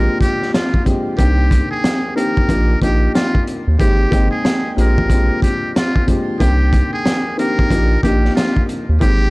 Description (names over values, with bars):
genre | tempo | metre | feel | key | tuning
hip hop, boom-bap hip-hop | 92 BPM | 4/4 | swing 63% on 16ths | unclear | A4 = 438 Hz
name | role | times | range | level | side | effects
trumpet with metal mute | melody | 0.0-9.3 s | F4 to Bb4 | -22 LUFS | equal | high-pass filter, low-pass filter, analog delay
dark upright piano | accompaniment | 0.0-9.3 s | Bb2 to G5 | -20 LUFS | left 1 dB | cassette tape, high-pass filter, low-pass filter
round analog bass | bass | 0.0-9.3 s | Ab1 to Eb2 | -15 LUFS | equal | tube saturation
crunchy breakbeat drum kit | drums | 0.2-9.2 s | hi-hat, kick drum, snare drum | -18 LUFS | equal | none
room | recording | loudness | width
studio ambience | dry, gritty hardware recording | -13 LUFS | side -23 dB against mid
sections
0.0-9.3 A section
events
none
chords
0.0 Bb13; 1.2 Cm9; 2.5 Ebmaj9/Bb; 3.8 Abmaj9; 4.8 Bb13; 6.4 Cm9; 7.7 Ebmaj9/Bb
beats
0.53 | 1.19 1.84 2.49 3.14 | 3.79 4.45 5.10 5.75 | 6.40 7.05 7.71 8.36 | 9.01